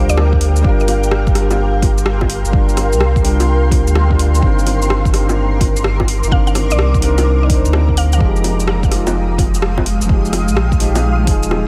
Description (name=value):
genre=future garage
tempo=127 BPM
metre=4/4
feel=swing 66% on 16ths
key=G phrygian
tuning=A4 = 444 Hz
part: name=felt-muted upright piano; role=accompaniment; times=0.0-11.7 s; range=Eb3 to C5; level=-23 LUFS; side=equal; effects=sidechain pumping, delay
part: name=granular cloud pad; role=sustained chords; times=0.0-11.7 s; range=Ab3 to Eb6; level=-25 LUFS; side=equal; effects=built-in reverb, ensemble chorus, sidechain pumping
part: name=warm sub bass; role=bass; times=0.0-11.7 s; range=Eb1 to D2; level=-18 LUFS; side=equal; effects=sidechain pumping
part: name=mallet-like synth pluck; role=melody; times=0.1-0.7, 6.3-8.2 s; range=D5 to F5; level=-29 LUFS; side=equal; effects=chorus, vintage 12-bit sampler grit, delay
part: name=deep house drum kit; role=drums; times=0.1-11.6 s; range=bongos, hi-hat, rim click, shaker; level=-24 LUFS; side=equal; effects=overdrive, small room ambience
part: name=electronic kick drum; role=drums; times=0.3-11.4 s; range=none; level=-18 LUFS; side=equal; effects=overdrive, small room ambience
room=light reverb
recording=none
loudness=-14 LUFS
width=mono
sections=0.0-11.7 A section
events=drum fill 11.5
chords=0.0 Gm7; 4.4 Cm9/G; 8.2 Fm9